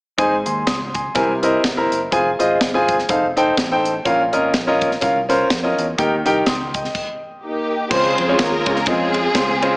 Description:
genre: uptempo gospel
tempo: 124 BPM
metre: 4/4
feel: swing 57% on 8ths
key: unclear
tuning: A4 = 440 Hz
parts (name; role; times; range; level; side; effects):
- clear grand piano; accompaniment; 0.2-9.7 s; Ab2 to Eb6; -17 LUFS; equal; slapback echo
- fingered electric bass; bass; 0.2-9.8 s; F1 to F2; -30 LUFS; equal; none
- crisp fusion drum kit; drums; 0.2-9.7 s; crash cymbal, hi-hat, kick drum, ride cymbal, snare drum; -22 LUFS; equal; none
- warm studio string section; melody; 7.4-9.8 s; Bb3 to C5; -19 LUFS; equal; slapback echo, tape echo
room: moderate lush hall reverb, RT60 2.2 s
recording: big arena sound, small speaker sound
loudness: -15 LUFS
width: side -29 dB against mid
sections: 0.2-7.9 A section; 7.9-9.8 B section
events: stop 6.9-7.9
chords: 0.2 Ab; 1.2 C7alt; 2.1 Fm; 3.1 F7; 4.1 Bbm; 6.0 Eb; 7.9 Dbmaj7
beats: | 0.18 0.67 1.15 1.64 | 2.12 2.60 3.09 3.57 | 4.05 4.54 5.02 5.50 | 5.98 6.46 6.95 7.43 | 7.91 8.39 8.87 9.35

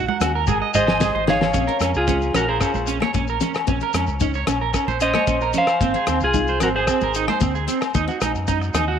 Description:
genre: highlife guitar band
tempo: 112 BPM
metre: 4/4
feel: straight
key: Bb minor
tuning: A4 = 439 Hz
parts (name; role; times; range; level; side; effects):
- picked steel-string acoustic guitar; accompaniment; 0.0-8.9 s; Bb3 to Eb4; -28 LUFS; left 12 dB; none
- electric guitar at the edge of break-up; arpeggios; 0.0-9.0 s; C4 to Ab5; -24 LUFS; right 9 dB; tape echo
- deep dub fingered electric bass; bass; 0.0-9.0 s; Ab1 to Gb2; -26 LUFS; left 1 dB; none
- congas; percussion; 0.1-8.9 s; none; -30 LUFS; right 11 dB; none
- damped 70s drum kit; drums; 0.2-8.9 s; hi-hat, kick drum, rim click, snare drum, toms; -25 LUFS; left 1 dB; none
- agogo bells; percussion; 0.2-8.9 s; none; -29 LUFS; left 10 dB; none
- shekere; percussion; 0.2-8.9 s; none; -31 LUFS; left 7 dB; none
- clean electric guitar; melody; 0.8-7.2 s; F4 to F5; -21 LUFS; right 1 dB; none
- breathy trumpet; second line; 0.8-7.3 s; F4 to Db5; -30 LUFS; left 12 dB; none
room: moderate spring reverb, RT60 2.2 s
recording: 1960s-style stereo with parts hard left and right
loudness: -18 LUFS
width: side -8 dB against mid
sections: 0.0-1.5 A section; 1.5-9.0 B section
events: drum fill 0.5-1.5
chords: 0.5 Ab; 1.5 Bbmadd9; 5.8 Abadd9; 7.9 Ebm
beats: 0.48 1.01 | 1.54 2.08 2.61 3.14 | 3.68 4.21 4.74 5.28 | 5.81 6.34 6.88 7.41 | 7.95 8.48

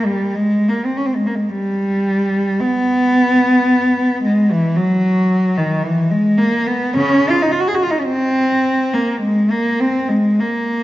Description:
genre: classical, free, expressive piece for unaccompanied cello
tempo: 46-56 BPM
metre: 4/4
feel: rubato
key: unclear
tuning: A4 = 442 Hz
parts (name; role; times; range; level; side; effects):
- warm cello; solo; 0.0-10.8 s; Db3 to Ab4; -14 LUFS; equal; none
room: wet recital hall reverb, RT60 1.9 s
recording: nothing above 7.5 kHz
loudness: -14 LUFS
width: side -15 dB against mid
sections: 0.0-10.8 A section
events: none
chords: none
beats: 0.34 1.49 | 2.61 3.70 4.77 5.86 | 6.95 8.08 9.20 10.40

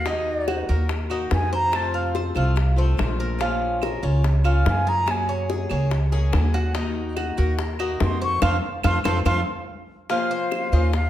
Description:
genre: latin, Cuban son and guajira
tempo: 144 BPM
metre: 4/4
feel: straight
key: Bb minor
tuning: A4 = 442 Hz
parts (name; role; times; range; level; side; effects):
- silver concert flute; melody; 0.0-2.0, 4.7-5.3, 8.0-11.1 s; Eb5 to Db6; -26 LUFS; equal; none
- picked swing-style acoustic guitar; accompaniment; 0.0-11.0 s; C3 to C5; -29 LUFS; left 4 dB; none
- Cuban tres; arpeggios; 0.0-11.1 s; Eb4 to F5; -29 LUFS; right 3 dB; none
- upright bass; bass; 0.0-11.1 s; Bb1 to Gb2; -22 LUFS; equal; none
- bongos; percussion; 0.1-11.1 s; none; -30 LUFS; left 5 dB; none
- claves; percussion; 0.5-10.7 s; none; -36 LUFS; right 10 dB; none
room: moderate large studio reverb, RT60 1.4 s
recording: none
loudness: -20 LUFS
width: side -12 dB against mid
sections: 0.0-10.1 A section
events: flute solo 0.0-10.1; band accent 8.4-10.1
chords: 0.1 Ebm; 1.7 F; 3.4 Bbm; 5.1 Gbadd9; 6.8 Ebm; 8.4 F; 10.1 Bbmadd9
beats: | 0.06 0.48 0.90 1.32 | 1.73 2.15 2.57 2.99 | 3.40 3.82 4.24 4.66 | 5.08 5.50 5.91 6.33 | 6.75 7.17 7.59 8.01 | 8.43 8.85 9.26 9.68 | 10.10 10.52 10.94

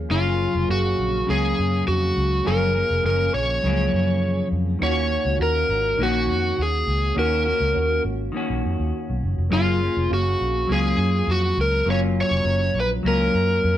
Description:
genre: indie pop, bedroom pop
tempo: 102 BPM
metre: 4/4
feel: straight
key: F# major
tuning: A4 = 440 Hz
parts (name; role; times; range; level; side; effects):
- semi-hollow electric guitar; accompaniment; 0.0-13.8 s; F#2 to F#4; -26 LUFS; left 2 dB; vibrato effect
- soft electric-piano-like synth keys; accompaniment; 0.0-13.8 s; A#3 to E#5; -32 LUFS; right 3 dB; chorus, phaser
- vintage muted fingered electric bass; bass; 0.0-13.8 s; E#1 to F#2; -24 LUFS; equal; none
- overdriven slide guitar; melody; 0.1-13.8 s; E#4 to C#5; -22 LUFS; equal; none
room: light reverb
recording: band playing live in one room, nothing above 10.9 kHz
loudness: -19 LUFS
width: side -12 dB against mid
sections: 0.1-13.8 A section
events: none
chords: 0.1 F#maj7; 4.8 D#m7; 9.5 F#maj7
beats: | 0.10 0.69 1.28 1.87 | 2.46 3.04 3.63 4.22 | 4.81 5.40 5.99 6.58 | 7.16 7.75 8.34 8.93 | 9.52 10.11 10.69 11.28 | 11.87 12.46 13.05 13.63

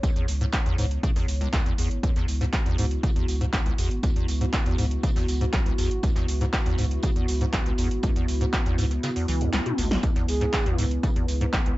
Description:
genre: acid house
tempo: 120 BPM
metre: 4/4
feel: straight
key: C# minor pentatonic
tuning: A4 = 440 Hz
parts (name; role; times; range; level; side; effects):
- dark analog pad; sustained chords; 0.0-11.8 s; B3 to C#5; -32 LUFS; equal; chorus, sidechain pumping
- acid bass, square; riff; 0.0-11.7 s; B1 to E3; -28 LUFS; equal; ensemble chorus, tape echo
- electro analog drum machine; drums; 0.0-11.8 s; handclaps, hi-hat, snare drum, toms; -31 LUFS; equal; overdrive
- electronic kick drum; drums; 0.0-11.6 s; none; -25 LUFS; equal; none
- soft brush drum kit; drums; 0.0-11.7 s; hi-hat, snare drum, tambourine; -40 LUFS; right 1 dB; sidechain pumping on hats, high-pass filter on hats, high-pass filter on snare, sidechain pumping on perc, high-pass filter on perc, high-pass filter on room
- warm sub bass; bass; 0.3-11.5 s; G#1 to C#2; -26 LUFS; equal; sidechain pumping
- breathy flute-like synth lead; melody; 10.3-10.8 s; G#4; -32 LUFS; right 2 dB; chorus, tape echo
room: light reverb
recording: dark, warm production, nothing above 7.8 kHz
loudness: -22 LUFS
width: side -18 dB against mid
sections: 0.0-11.8 A section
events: kick drops out 9.0-10.0; drum fill 9.5-10.0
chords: 0.0 C#m7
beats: | 0.03 0.53 1.03 1.53 | 2.03 2.53 3.03 3.53 | 4.03 4.53 5.03 5.53 | 6.03 6.53 7.03 7.53 | 8.03 8.53 9.03 9.53 | 10.03 10.53 11.03 11.53

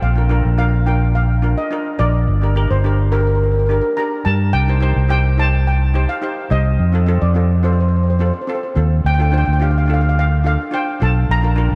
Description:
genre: calypso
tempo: 106 BPM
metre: 4/4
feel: straight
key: Bb major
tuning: A4 = 442 Hz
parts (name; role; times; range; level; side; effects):
- steel pan; melody; 0.0-11.8 s; Bb4 to Bb5; -25 LUFS; equal; tape echo
- fingered electric bass; bass; 0.0-11.8 s; G1 to G2; -17 LUFS; equal; none
- steel pan; accompaniment; 0.2-11.7 s; C4 to C5; -27 LUFS; equal; none
room: moderate cathedral reverb, RT60 5.2 s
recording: dreamy mix soaked in reverb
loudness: -16 LUFS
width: mono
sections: 0.0-11.8 A section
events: none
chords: 0.0 Bb; 2.3 Gm; 4.5 Cm; 6.8 F; 9.0 Dm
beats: | 0.02 0.59 1.15 1.71 | 2.28 2.84 3.41 3.97 | 4.54 5.10 5.66 6.23 | 6.79 7.35 7.92 8.48 | 9.04 9.61 10.17 10.73 | 11.29

